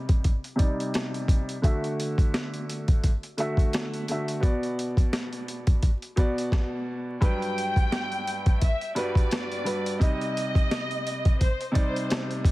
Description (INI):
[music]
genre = hip hop, boom-bap hip-hop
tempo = 86 BPM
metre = 4/4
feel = swing 56% on 16ths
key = G major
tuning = A4 = 440 Hz
[part]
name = clear upright piano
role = accompaniment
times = 0.0-12.5 s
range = G2 to E5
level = -30 LUFS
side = equal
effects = high-pass filter, low-pass filter
[part]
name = boom bap sampler-style drum kit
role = drums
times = 0.1-12.5 s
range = hi-hat, kick drum, snare drum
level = -24 LUFS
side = equal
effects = none
[part]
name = warm studio violin section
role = melody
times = 7.2-12.3 s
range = C5 to G5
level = -31 LUFS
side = equal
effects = high-pass filter, low-pass filter, tape echo
[sound]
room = light reverb, studio ambience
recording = heavily compressed radio sound, multiband compression, vinyl crackle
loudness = -24 LUFS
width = side -18 dB against mid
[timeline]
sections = 0.0-7.2 A section; 7.2-12.5 B section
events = filter sweep on upright piano 0.0-7.2; stop 6.5-7.2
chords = 0.0 Cmadd9; 1.6 Dadd9; 4.4 Bm; 7.2 Gmaj7; 10.0 Cmadd9